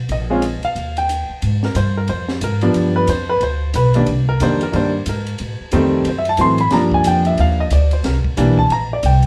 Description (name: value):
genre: jazz piano trio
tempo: 182 BPM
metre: 4/4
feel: swing 62% on 8ths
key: C minor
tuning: A4 = 439 Hz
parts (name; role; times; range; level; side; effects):
- upright bass; bass; 0.0-9.3 s; Bb1 to A2; -21 LUFS; equal; none
- clear concert grand piano; melody; 0.1-9.2 s; Eb3 to C6; -19 LUFS; equal; none
- compact cocktail drum kit; drums; 0.1-9.3 s; hi-hat, kick drum, ride cymbal, snare drum; -30 LUFS; equal; none
room: wet studio reverb, RT60 0.7 s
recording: band playing live in one room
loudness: -17 LUFS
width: mono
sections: 0.0-1.4 A section; 1.4-9.3 B section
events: none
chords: 0.1 Bb5; 0.8 Eb; 1.4 Ab69; 2.8 G7; 4.1 Cm7; 5.4 Am7b5; 6.1 F#m7b5; 6.7 Gm7; 8.0 C7(no3)